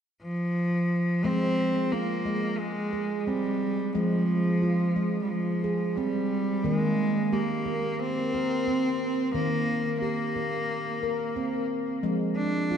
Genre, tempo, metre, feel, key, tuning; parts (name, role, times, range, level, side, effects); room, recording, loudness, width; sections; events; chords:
world meditative, meditative tuned percussion; 89 BPM; 4/4; straight; F minor; A4 = 440 Hz
clear cello; melody; 0.2-12.8 s; F3 to D4; -28 LUFS; equal; diffuse ambient delay
handpan; arpeggios; 1.2-12.8 s; Eb3 to Bb4; -28 LUFS; right 1 dB; diffuse ambient delay
wet echo chamber reverb, RT60 2.2 s; dark, warm production; -25 LUFS; side -8 dB against mid
0.0-1.2 A section; 1.2-12.8 B section
0.0 N.C.; 1.2 Fm; 6.6 Eb; 12.0 Fm